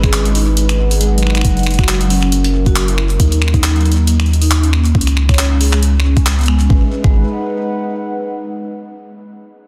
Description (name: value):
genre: IDM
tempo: 137 BPM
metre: 4/4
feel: swing 56% on 16ths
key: G# minor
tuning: A4 = 440 Hz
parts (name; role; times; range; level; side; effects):
- warbly tape-like pad; sustained chords; 0.0-8.4 s; F#3 to F#5; -25 LUFS; equal; chorus, built-in reverb
- vibraphone with soft mallets; arpeggios; 0.0-7.2 s; F#3 to C#5; -24 LUFS; equal; low-pass filter, digital delay
- round analog bass; bass; 0.0-7.2 s; F#1 to D#2; -16 LUFS; equal; tube saturation
- electronic kick drum; drums; 0.0-7.1 s; none; -16 LUFS; equal; none
- jungle sampler-style drum kit; drums; 0.0-6.7 s; finger snaps, handclaps, hi-hat; -22 LUFS; equal; soft clipping on snare, digital delay
room: little or no reverb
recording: dense, heavily limited modern master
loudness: -14 LUFS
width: mono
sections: 0.0-6.7 A section; 6.7-8.5 B section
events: filter sweep on ambient pad 0.0-6.7; filter sweep on vibraphone 0.0-6.7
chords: 0.0 G#m7; 1.4 F#7; 3.2 D#m; 4.9 C#m7; 6.7 G#m7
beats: 0.13 0.57 1.01 | 1.45 1.88 2.32 2.76 | 3.20 3.63 4.07 4.51 | 4.95 5.39 5.83 6.26 | 6.70 7.14 7.58 8.02